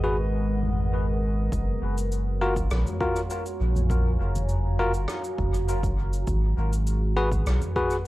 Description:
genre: ambient dub.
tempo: 101 BPM.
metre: 4/4.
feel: straight.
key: unclear.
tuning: A4 = 441 Hz.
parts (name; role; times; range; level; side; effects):
deep dark ambient pad; sustained chords; 0.0-8.1 s; G#3 to A#5; -33 LUFS; equal; chorus, built-in reverb, cassette tape.
bell-like tine electric piano; stabs; 0.0-8.0 s; E#4 to B4; -29 LUFS; left 2 dB; cassette tape, dub echo.
warm sub bass; bass; 0.0-7.6 s; F#1 to B1; -25 LUFS; equal; none.
drifting glass-harmonics texture; texture; 0.0-1.5 s; D#5; -46 LUFS; right 2 dB; chorus, built-in reverb, cassette tape.
soft-mallet drum kit; drums; 0.6-8.0 s; cabasa, rim click, toms; -32 LUFS; equal; cassette tape.
electronic kick drum; drums; 1.5-7.9 s; none; -32 LUFS; equal; overdrive, cassette tape.
room: light reverb, studio ambience.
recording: home recording on cassette.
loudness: -23 LUFS.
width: side -17 dB against mid.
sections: 0.0-1.5 A section; 1.5-8.1 B section.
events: filter sweep on drum 0.0-1.5.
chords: 0.0 G#m7; 1.5 F#maj7; 6.3 G#m7.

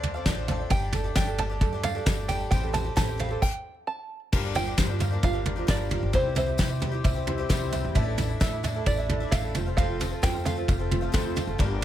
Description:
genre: indie folk with a building arrangement.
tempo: 132 BPM.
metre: 4/4.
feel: straight.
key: unclear.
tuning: A4 = 438 Hz.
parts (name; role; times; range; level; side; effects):
picked twelve-string acoustic guitar; accompaniment; 0.0-11.8 s; F2 to A4; -35 LUFS; left 7 dB; none.
tenor ukulele; arpeggios; 0.0-11.8 s; E4 to G5; -34 LUFS; right 9 dB; none.
upright bass; bass; 0.0-11.8 s; F1 to C3; -31 LUFS; equal; none.
soft brush drum kit; drums; 0.0-11.8 s; crash cymbal, kick drum, snare drum, toms; -27 LUFS; equal; none.
open-back banjo; melody; 0.7-11.3 s; C5 to A5; -32 LUFS; right 4 dB; none.
tambourine; percussion; 0.7-11.8 s; none; -44 LUFS; left 7 dB; none.
dark baby grand piano; accompaniment; 4.3-11.8 s; F1 to D5; -37 LUFS; left 6 dB; none.
room: light reverb, small room ambience.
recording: none.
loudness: -24 LUFS.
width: side -12 dB against mid.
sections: 0.0-4.3 A section; 4.3-11.8 B section.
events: stop 3.4-4.3.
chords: 0.0 Dm7; 0.7 Gsus2; 2.5 Am7; 4.3 Gm7; 6.1 C; 8.0 Asus4; 9.5 F.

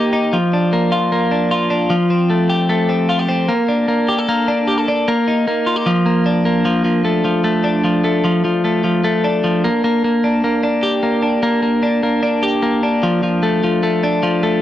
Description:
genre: indie pop.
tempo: 151 BPM.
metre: 4/4.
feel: straight.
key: Bb major.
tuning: A4 = 440 Hz.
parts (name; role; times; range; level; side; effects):
twelve-string electric guitar; solo; 0.0-14.6 s; F3 to A4; -14 LUFS; equal; spring reverb.
room: little or no reverb.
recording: dry, close 1970s-style studio recording.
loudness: -14 LUFS.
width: side -12 dB against mid.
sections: 0.0-6.7 A section; 6.7-14.6 B section.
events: none.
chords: 0.3 Bb; 1.9 Fadd9; 3.5 Gmadd9; 5.1 Eb; 5.9 Bb; 6.7 F6; 9.6 Bb6; 13.0 F6.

